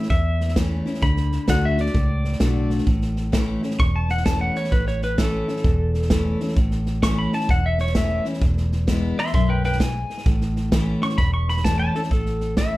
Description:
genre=honky-tonk and classic country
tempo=130 BPM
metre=4/4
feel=swing 65% on 8ths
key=A major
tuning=A4 = 437 Hz
part: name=pedal steel guitar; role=melody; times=0.0-12.8 s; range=A4 to C#6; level=-26 LUFS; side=equal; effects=none
part: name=picked steel-string acoustic guitar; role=accompaniment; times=0.0-12.8 s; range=E2 to F#4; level=-26 LUFS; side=left 2 dB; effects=none
part: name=natural country drum kit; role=drums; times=0.0-12.7 s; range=hi-hat, kick drum, snare drum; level=-23 LUFS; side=equal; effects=none
part: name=vintage muted fingered electric bass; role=bass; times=0.1-12.8 s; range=E1 to E2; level=-23 LUFS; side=equal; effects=none
room=light reverb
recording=dark, warm production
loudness=-19 LUFS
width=side -18 dB against mid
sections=0.0-12.1 A section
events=pedal steel guitar solo 0.0-12.1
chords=0.0 A; 1.0 D; 2.9 A; 8.4 E; 10.3 A

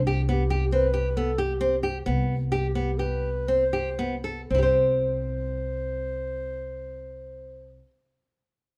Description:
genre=contemporary instrumental, contemporary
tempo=113-137 BPM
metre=5/4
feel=straight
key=unclear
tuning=A4 = 439 Hz
part: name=upright bass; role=bass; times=0.0-7.8 s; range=C2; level=-31 LUFS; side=equal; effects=none
part: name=nylon-string guitar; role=arpeggios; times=0.1-7.9 s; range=B3 to C5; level=-29 LUFS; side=equal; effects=none
part: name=dark clarinet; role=melody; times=0.3-7.8 s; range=G4 to C5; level=-34 LUFS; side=equal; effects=none
room=light reverb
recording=close, detailed microphones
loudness=-26 LUFS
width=mono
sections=0.0-4.5 A section; 4.5-8.8 B section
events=slowing down 0.7-4.5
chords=0.0 C5

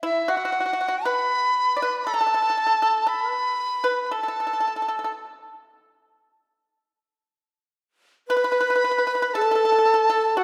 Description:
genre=chinese traditional, Chinese chamber ensemble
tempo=58 BPM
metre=4/4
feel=straight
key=unclear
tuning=A4 = 440 Hz
part: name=large dizi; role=melody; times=0.0-10.4 s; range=E5 to B5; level=-25 LUFS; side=equal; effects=none
part: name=pipa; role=second line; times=0.0-10.4 s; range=E4 to D5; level=-29 LUFS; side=equal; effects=none
part: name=breathy bright xiao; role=second line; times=8.3-10.4 s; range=F#4 to B4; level=-24 LUFS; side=equal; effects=none
room=wet concert hall reverb, RT60 2.0 s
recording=none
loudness=-22 LUFS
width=mono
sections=0.0-8.3 A section; 8.3-10.4 B section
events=none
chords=none

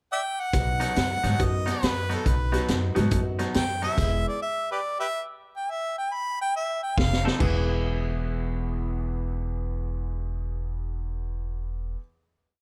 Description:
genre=electric blues shuffle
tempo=140 BPM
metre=4/4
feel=swing 64% on 8ths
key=E major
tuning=A4 = 440 Hz
part: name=mellow harmonica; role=melody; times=0.1-7.2 s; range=G4 to B5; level=-30 LUFS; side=equal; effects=none
part: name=bright upright piano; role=accompaniment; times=0.5-4.3, 7.4-12.0 s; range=E2 to B4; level=-36 LUFS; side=equal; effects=none
part: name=upright bass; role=bass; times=0.5-4.2, 7.0-11.9 s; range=E1 to G#2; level=-30 LUFS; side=equal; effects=none
part: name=vintage drum kit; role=drums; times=0.5-4.1, 7.0-7.5 s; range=crash cymbal, hi-hat, kick drum, snare drum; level=-30 LUFS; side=equal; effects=none
part: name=clean electric guitar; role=riff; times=0.8-4.0, 7.2-12.0 s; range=B2 to A4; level=-36 LUFS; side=equal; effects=none
room=light reverb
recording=none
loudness=-27 LUFS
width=mono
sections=0.0-0.5 pickup bar; 0.5-7.4 head; 7.4-10.8 final chord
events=stop 4.0-7.0; drum fill 7.0-7.4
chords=0.0 N.C.; 0.5 B; 4.0 E; 7.0 F7; 7.4 E

